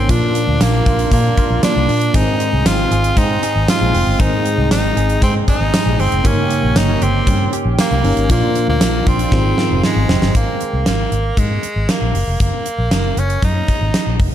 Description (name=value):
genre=1980s-style pop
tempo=117 BPM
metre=4/4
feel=straight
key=Ab major, Ab mixolydian from 10.3 s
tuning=A4 = 440 Hz
part: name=raspy tenor saxophone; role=melody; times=0.0-14.2 s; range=Ab3 to F4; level=-20 LUFS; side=equal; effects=none
part: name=FM electric piano with soft pad layer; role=accompaniment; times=0.0-10.4 s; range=G2 to D5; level=-21 LUFS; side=left 2 dB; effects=chorus, tremolo
part: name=direct-recorded clean electric guitar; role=riff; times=0.0-10.9 s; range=Eb3 to Ab4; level=-24 LUFS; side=right 4 dB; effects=ensemble chorus, digital delay
part: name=vintage muted fingered electric bass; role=bass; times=0.0-14.3 s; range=F1 to Bb2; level=-18 LUFS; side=equal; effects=none
part: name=gated 80s drum kit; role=drums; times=0.1-14.3 s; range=hi-hat, kick drum, snare drum, tambourine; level=-17 LUFS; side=equal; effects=none
room=light reverb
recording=dark, warm production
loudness=-13 LUFS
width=side -10 dB against mid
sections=0.0-10.3 A section; 10.3-14.3 B section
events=drum fill 9.3-10.3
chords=0.1 Bb; 2.1 Ab; 6.2 Eb7/G; 8.3 Bb; 9.3 Ab6; 10.3 Abadd9; 12.4 Gb6